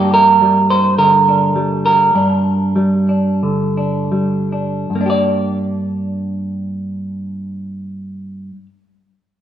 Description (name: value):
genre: folk, solo fingerstyle acoustic guitar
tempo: 74-106 BPM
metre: 4/4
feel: rubato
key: G minor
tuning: A4 = 435 Hz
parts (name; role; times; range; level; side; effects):
- semi-hollow electric guitar; solo; 0.0-8.7 s; G2 to D5; -14 LUFS; right 2 dB; spring reverb
room: wet recital hall reverb, RT60 1.4 s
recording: recorded in a church or concert hall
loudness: -13 LUFS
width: side -10 dB against mid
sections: 0.0-4.9 A section; 4.9-8.0 B section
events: slowing down 0.0-4.9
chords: 0.0 Gm